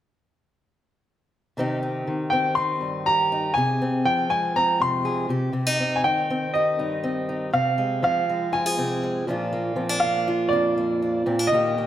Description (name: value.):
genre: folk.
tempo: 121 BPM.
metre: 4/4.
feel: straight.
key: C minor.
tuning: A4 = 436 Hz.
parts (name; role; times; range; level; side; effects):
fingerpicked acoustic archtop guitar; accompaniment; 1.6-11.9 s; F2 to Ab4; -24 LUFS; equal; none.
bright upright piano; melody; 2.3-11.9 s; D5 to C6; -22 LUFS; equal; none.
room: wet recital hall reverb, RT60 1.6 s.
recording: none.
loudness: -21 LUFS.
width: side -11 dB against mid.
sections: 1.6-5.5 A section; 5.5-11.9 B section.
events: none.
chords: 1.6 Cm; 3.5 Fm/C; 5.3 C5; 5.5 Cm; 7.5 Fm/C; 9.3 Bb.